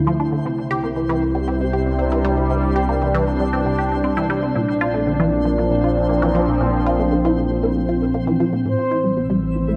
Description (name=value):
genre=ambient, sequencer-driven space music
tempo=117 BPM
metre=4/4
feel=straight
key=unclear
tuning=A4 = 439 Hz
part: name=sweeping resonant pad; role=sustained chords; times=0.0-9.8 s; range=A2 to F4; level=-22 LUFS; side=equal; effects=chorus
part: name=round analog bass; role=bass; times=0.0-9.8 s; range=A1 to D2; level=-28 LUFS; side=equal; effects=none
part: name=twinkling granular texture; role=texture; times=0.0-9.8 s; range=E3 to E6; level=-38 LUFS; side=equal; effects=built-in reverb
part: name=resonant blip pluck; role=riff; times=0.1-9.8 s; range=A2 to G4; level=-25 LUFS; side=equal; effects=phaser, analog delay
part: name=mellow horn-like synth lead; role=melody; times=8.7-9.8 s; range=C5 to E5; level=-25 LUFS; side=equal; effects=subtle chorus, analog delay
room=moderate plate reverb, RT60 2.4 s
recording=none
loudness=-19 LUFS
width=mono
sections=0.0-9.8 A section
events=fade-in on synth texture 0.0-9.8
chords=0.5 C; 4.6 Bb; 8.7 Am7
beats=| 0.45 0.97 1.48 1.99 | 2.50 3.02 3.53 4.04 | 4.56 5.07 5.58 6.09 | 6.61 7.12 7.63 8.15 | 8.66 9.17 9.69